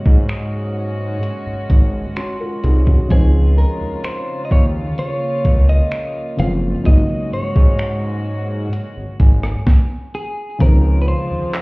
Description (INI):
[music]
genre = contemporary R&B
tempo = 64 BPM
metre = 4/4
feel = straight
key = Db major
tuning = A4 = 440 Hz
[part]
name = clean electric guitar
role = melody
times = 0.0-11.6 s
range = Ab4 to F5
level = -26 LUFS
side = equal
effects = digital delay
[part]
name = felt-muted upright piano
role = accompaniment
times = 0.0-11.6 s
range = Db3 to Bb4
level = -25 LUFS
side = left 1 dB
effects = none
[part]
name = dark chamber string section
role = sustained chords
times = 0.0-11.6 s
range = Db3 to Gb4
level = -28 LUFS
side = equal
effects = sidechain pumping
[part]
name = fat analog bass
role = bass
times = 0.1-11.4 s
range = Gb1 to Ab2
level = -16 LUFS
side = equal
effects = none
[part]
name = crisp 8-bit digital drum machine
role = drums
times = 0.1-11.6 s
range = finger snaps, handclaps, hi-hat, kick drum, rim click, snare drum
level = -13 LUFS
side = equal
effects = none
[part]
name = large celesta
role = texture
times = 0.3-11.6 s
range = F5 to Eb6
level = -37 LUFS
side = right 1 dB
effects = digital delay
[sound]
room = little or no reverb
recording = heard muffled through a wall, stone room reverb, EQ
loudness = -14 LUFS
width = side -26 dB against mid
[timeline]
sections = 0.0-10.6 A section; 10.6-11.6 B section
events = none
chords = 0.0 Ab9sus4; 3.1 Dbmaj7; 6.9 Ab9sus4; 10.6 Dbmaj7